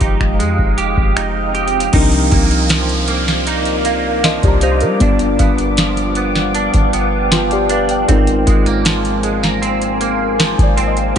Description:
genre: contemporary R&B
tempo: 78 BPM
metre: 4/4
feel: straight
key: C minor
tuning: A4 = 440 Hz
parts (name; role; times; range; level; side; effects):
- muted felt-like synth keys; accompaniment; 0.0-11.2 s; F3 to G5; -19 LUFS; left 3 dB; chorus
- deep dark ambient pad; sustained chords; 0.0-11.2 s; Ab3 to Eb6; -20 LUFS; left 1 dB; chorus, built-in reverb
- direct-recorded clean electric guitar; arpeggios; 0.0-11.2 s; G2 to G4; -21 LUFS; right 8 dB; ensemble chorus, ping-pong delay
- warm 808-style bass; bass; 0.0-11.1 s; F1 to G3; -19 LUFS; equal; none
- booming analog drum machine; drums; 0.0-11.2 s; crash cymbal, finger snaps, hi-hat, kick drum, snare drum; -16 LUFS; equal; none
- swell and downlifter; sound effects; 0.8-8.1 s; none; -26 LUFS; equal; none
- soft round pluck; texture; 1.9-11.2 s; Bb4 to C6; -29 LUFS; equal; none
room: digital ambience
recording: nothing above 10.4 kHz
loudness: -12 LUFS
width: side -8 dB against mid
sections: 0.0-1.9 A section; 1.9-11.2 B section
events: swell 0.8-1.9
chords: 0.0 Fm9; 1.9 Cm11; 5.0 G7; 8.1 Ab69

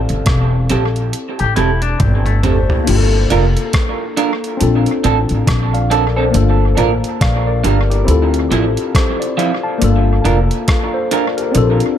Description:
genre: lovers rock reggae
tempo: 69 BPM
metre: 4/4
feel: swing 60% on 16ths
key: unclear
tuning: A4 = 439 Hz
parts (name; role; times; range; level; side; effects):
- tine electric piano; accompaniment; 0.0-12.0 s; Bb3 to A5; -18 LUFS; left 4 dB; phaser, dub echo
- upright bass; bass; 0.0-11.8 s; E1 to D2; -15 LUFS; equal; none
- detuned 8-bit digital drum machine; drums; 0.1-12.0 s; crash cymbal, hi-hat, kick drum, rim click, toms; -19 LUFS; equal; dub echo
- electric guitar through a small old amp; stabs; 0.7-11.2 s; F3 to Bb4; -20 LUFS; right 6 dB; wide subtle chorus, dub echo
- electric guitar with an envelope filter; arpeggios; 1.4-2.8 s; A3 to G4; -23 LUFS; left 5 dB; dub echo
room: light reverb, digital ambience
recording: none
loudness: -12 LUFS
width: side -10 dB against mid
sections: 0.0-2.9 A section; 2.9-12.0 B section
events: drum fill 2.0-2.9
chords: 0.0 Am7; 2.9 Gm7; 4.6 Bbmaj9; 6.3 Gm7; 8.1 Dm9; 9.8 Gm7

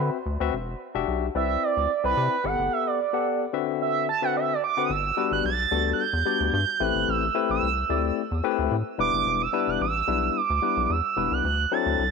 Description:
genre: early-eighties boogie funk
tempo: 110 BPM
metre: 4/4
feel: straight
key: unclear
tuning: A4 = 440 Hz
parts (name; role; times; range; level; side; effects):
- expressive synth lead; melody; 0.0-12.1 s; B4 to A6; -25 LUFS; right 9 dB; chorus, tape echo
- barky tine electric piano; accompaniment; 0.0-12.0 s; D3 to F#5; -27 LUFS; left 15 dB; overdrive
- rubbery square bass; bass; 0.0-12.1 s; E1 to D3; -29 LUFS; equal; none
room: light reverb, digital ambience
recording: 1960s-style stereo with parts hard left and right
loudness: -22 LUFS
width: side -5 dB against mid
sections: 0.0-4.9 A section; 4.9-12.1 B section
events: analog synth lead solo 0.0-4.9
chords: 0.0 D13; 0.5 Em9; 1.4 Cmaj9; 2.4 Gmaj9; 3.5 D13; 4.9 Gmaj7; 6.8 Am9; 9.0 Em7; 11.4 D9

